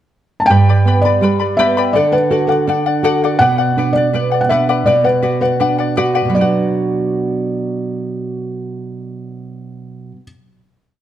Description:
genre	andean folk, Andean ensemble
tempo	82 BPM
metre	2/4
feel	straight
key	B minor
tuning	A4 = 444 Hz
part	felt-muted upright piano	melody	0.4-10.2 s	A4 to A5	-16 LUFS	equal	none
part	charango	accompaniment	0.5-10.3 s	G4 to B5	-19 LUFS	left 7 dB	none
part	nylon-string guitar	accompaniment	0.5-10.3 s	G2 to F#4	-16 LUFS	right 3 dB	none
room	moderate recital hall reverb, RT60 1.3 s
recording	close, detailed microphones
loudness	-12 LUFS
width	side -11 dB against mid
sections	0.0-0.5 pickup bar; 0.5-6.3 A section; 6.3-9.2 final chord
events	none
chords	0.5 G; 2.0 D; 3.4 Bm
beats	| 0.50 1.23 | 1.96 2.69 | 3.42 4.14 | 4.87 5.60 | 6.33 7.06 | 7.79 8.52

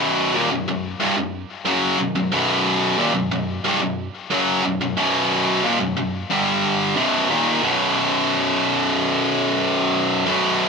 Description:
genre	metal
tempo	91 BPM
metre	4/4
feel	straight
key	unclear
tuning	A4 = 441 Hz
part	tight distorted guitar	solo	0.0-10.7 s	B1 to G3	-18 LUFS	equal	distortion, ping-pong delay
room	moderate studio reverb, RT60 0.6 s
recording	rough home demo mix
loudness	-18 LUFS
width	side -4 dB against mid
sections	0.0-7.6 A section; 7.6-10.7 B section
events	none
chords	0.0 B5; 6.3 G5; 7.0 B; 7.6 B5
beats	0.34 1.00 1.67 | 2.33 2.99 3.65 4.32 | 4.98 5.64 6.30 6.96 | 7.62 8.29 8.95 9.61 | 10.27

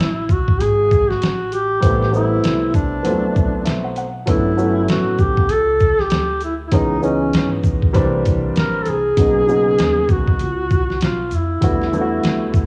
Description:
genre	hip hop, jazz-hop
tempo	98 BPM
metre	4/4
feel	swing 59% on 16ths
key	unclear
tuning	A4 = 439 Hz
part	mellow duduk	melody	0.0-12.7 s	C#4 to Bb4	-21 LUFS	equal	cassette tape
part	upright bass	bass	0.0-12.7 s	G1 to G#2	-27 LUFS	equal	none
part	boom bap sampler-style drum kit	drums	0.0-12.7 s	hi-hat, kick drum, shaker, snare drum	-21 LUFS	equal	vintage 12-bit sampler grit, cassette tape
part	dark baby grand piano	accompaniment	1.8-12.7 s	C#3 to F#5	-22 LUFS	equal	cassette tape
room	light reverb, small room ambience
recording	home recording on cassette, small room reverb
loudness	-17 LUFS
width	mono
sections	0.0-12.7 A section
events	break 0.0-1.8; grand piano fill 3.4-4.3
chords	0.0 F#madd9; 1.8 Am7; 3.0 D13; 4.3 Gmaj9#11; 6.7 C#m7; 7.9 C9; 9.2 Bmaj9; 11.6 Em11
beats	0.60 1.21 | 1.83 2.44 3.05 3.66 | 4.28 4.89 5.50 6.11 | 6.72 7.34 7.95 8.56 | 9.17 9.79 10.40 11.01 | 11.62 12.23

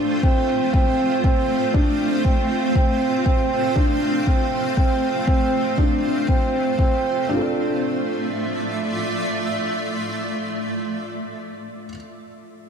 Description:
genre	piano and strings electronica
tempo	119 BPM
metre	4/4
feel	straight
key	D minor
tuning	A4 = 440 Hz
part	granular cloud pad	sustained chords	0.0-11.8 s	A3 to F5	-24 LUFS	right 1 dB	built-in reverb, sidechain pumping
part	felt-muted upright piano	riff	0.0-11.9 s	C4 to D5	-22 LUFS	right 1 dB	tape echo
part	electronic hi-hat	drums	0.1-7.3 s	none	barely audible	none	none
part	electronic kick drum	drums	0.2-6.9 s	none	-19 LUFS	equal	none
room	moderate lush hall reverb, RT60 1.8 s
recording	dark, warm production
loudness	-18 LUFS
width	side -7 dB against mid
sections	0.0-7.3 A section; 7.3-11.3 B section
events	none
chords	0.0 F; 7.3 Dmadd9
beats	0.23 0.74 | 1.24 1.75 2.25 2.75 | 3.26 3.76 4.27 4.77 | 5.28 5.78 6.28 6.79 | 7.29 7.80 8.30 8.80 | 9.31 9.81 10.32 10.82

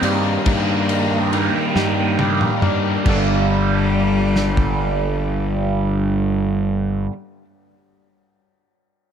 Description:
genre	post-rock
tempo	46 BPM (dotted quarters)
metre	6/8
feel	straight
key	G minor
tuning	A4 = 439 Hz
part	clear cello	melody	0.0-6.4 s	G3 to C4	-27 LUFS	left 2 dB	tape echo
part	rich studio string section	sustained chords	0.0-6.4 s	G3 to Bb5	-33 LUFS	left 2 dB	none
part	harp-like synth pluck	arpeggios	0.0-3.5 s	G3 to D5	-29 LUFS	right 3 dB	chorus, tape echo
part	twangy electric guitar	arpeggios	0.0-7.1 s	G2 to A4	-29 LUFS	left 6 dB	phaser, tape echo
part	overdriven semi-hollow guitar	riff	0.0-7.1 s	G2 to Eb4	-24 LUFS	left 11 dB	none
part	raw garage guitar	riff	0.0-7.1 s	G2 to Eb4	-22 LUFS	right 9 dB	overdrive, phaser
part	fuzz picked electric bass	bass	0.0-7.1 s	G1 to G2	-22 LUFS	equal	overdrive
part	loose indie drum kit	drums	0.0-4.8 s	crash cymbal, kick drum, ride cymbal, snare drum, toms	-24 LUFS	equal	none
room	small room ambience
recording	none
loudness	-16 LUFS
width	side -8 dB against mid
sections	0.0-3.1 A section; 3.1-5.7 B section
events	drum fill 1.8-3.1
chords	0.0 Eb/G; 3.1 Gmadd9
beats	| 0.47 1.76 | 3.06 4.36

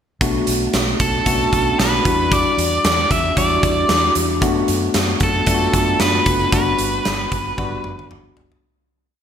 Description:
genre	1980s-style pop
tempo	114 BPM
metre	4/4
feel	swing 55% on 16ths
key	B minor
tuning	A4 = 439 Hz
part	bell-like tine electric piano	accompaniment	0.2-8.7 s	G3 to F#4	-21 LUFS	left 2 dB	phaser
part	vintage muted fingered electric bass	bass	0.2-8.6 s	F#1 to F#2	-25 LUFS	equal	none
part	big rock drum kit	drums	0.2-8.6 s	hi-hat, kick drum, snare drum, toms	-20 LUFS	right 1 dB	gated reverb
part	biting lead guitar	melody	1.0-8.1 s	A4 to E5	-19 LUFS	equal	overdrive
room	wet lush hall reverb, RT60 1.9 s, small room reverb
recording	bright 1980s-style digital production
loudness	-15 LUFS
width	side -8 dB against mid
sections	0.2-8.6 verse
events	fade-out 6.5-8.6; drum fill 7.6-8.6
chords	0.2 Bm7; 2.1 Em9; 4.4 Bm7/F#; 6.5 Gmaj7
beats	| 0.21 0.74 1.26 1.79 | 2.32 2.84 3.37 3.90 | 4.42 4.95 5.47 6.00 | 6.53 7.05 7.58 8.11

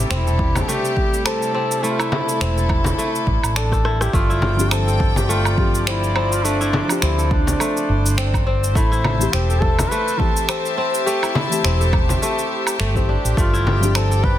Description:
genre	organic downtempo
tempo	104 BPM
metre	4/4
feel	swing 56% on 16ths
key	A minor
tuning	A4 = 440 Hz
part	rich chamber string section	sustained chords	0.0-14.4 s	C3 to A5	-27 LUFS	left 1 dB	sidechain pumping
part	kora	arpeggios	0.0-14.4 s	A3 to A4	-25 LUFS	left 2 dB	digital delay
part	mellow fretless electric bass	bass	0.0-14.4 s	E1 to D2	-20 LUFS	equal	tube saturation, wide subtle chorus, sidechain pumping
part	drifting glass-harmonics texture	texture	0.0-4.2 s	D4 to D5	-39 LUFS	left 2 dB	none
part	warm duduk	melody	0.1-14.4 s	D4 to B4	-24 LUFS	equal	tape echo
part	electronic finger snaps, cabasa, woodblock and rim click	drums	0.1-14.2 s	none	-25 LUFS	right 2 dB	studio reverb, soft clipping on snare
part	electronic kick drum	drums	0.4-14.4 s	none	-21 LUFS	equal	studio reverb
part	frame drum	percussion	0.6-13.8 s	none	-25 LUFS	left 2 dB	none
part	deep mellow chord stab	accompaniment	4.6-14.4 s	E3 to G4	-28 LUFS	left 3 dB	chorus, sidechain pumping, digital delay
room	light reverb, studio ambience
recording	dense, heavily limited modern master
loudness	-16 LUFS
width	side -12 dB against mid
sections	0.0-4.1 A section; 4.1-14.4 B section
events	drum fill 3.7-4.1; band accent 4.0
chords	0.0 Am7; 4.1 G7sus4; 8.8 Am7; 13.4 G7sus4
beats	0.10 0.68 1.26 | 1.83 2.41 2.99 3.56 | 4.14 4.72 5.29 5.87 | 6.45 7.03 7.60 8.18 | 8.76 9.33 9.91 10.49 | 11.06 11.64 12.22 12.79 | 13.37 13.95

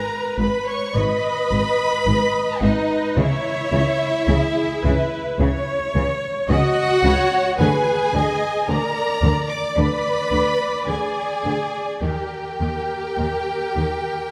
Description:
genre	classical, slow romantic movement for string orchestra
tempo	54 BPM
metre	4/4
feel	rubato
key	G# minor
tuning	A4 = 441 Hz
part	rich studio violin section	melody	0.0-14.3 s	D#5 to D6	-28 LUFS	equal	none
part	clear studio violin section	second line	0.0-14.3 s	D#4 to D5	-26 LUFS	equal	none
part	rich studio viola section	accompaniment	0.0-14.3 s	G#4 to D#5	-28 LUFS	equal	none
part	clear studio cello section	bass	0.4-13.8 s	G#2 to D#3	-28 LUFS	equal	none
part	clear studio double bass section	bass	0.4-13.8 s	G#1 to D#2	-28 LUFS	equal	none
room	moderate concert hall reverb, RT60 2.1 s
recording	dark, warm production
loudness	-21 LUFS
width	mono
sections	0.0-14.3 A section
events	none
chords	0.0 G#m; 3.2 C#m; 7.6 A#7b9/D; 12.0 D#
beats	0.95 2.07 | 3.17 4.28 5.40 6.50 | 7.58 8.68 9.78 10.88 | 12.02 13.18

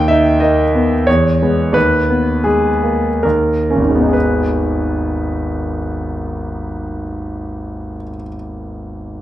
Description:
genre	classical, romantic character piece for solo piano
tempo	62-94 BPM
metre	3/4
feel	rubato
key	G# minor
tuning	A4 = 438 Hz
part	clear concert grand piano	solo	0.0-9.2 s	G#1 to G5	-14 LUFS	equal	none
room	moderate large studio reverb, RT60 1.2 s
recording	dark, warm production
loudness	-13 LUFS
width	side -13 dB against mid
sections	0.0-4.1 A section; 4.1-9.2 B section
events	slowing down 0.0-4.1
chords	0.0 D#5; 1.1 E; 1.7 G#m/D#; 3.2 D#5; 4.1 G#m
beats	0.41 1.07 | 1.75 2.45 3.24 | 4.14 4.96 5.82 | 6.68 7.51 8.35

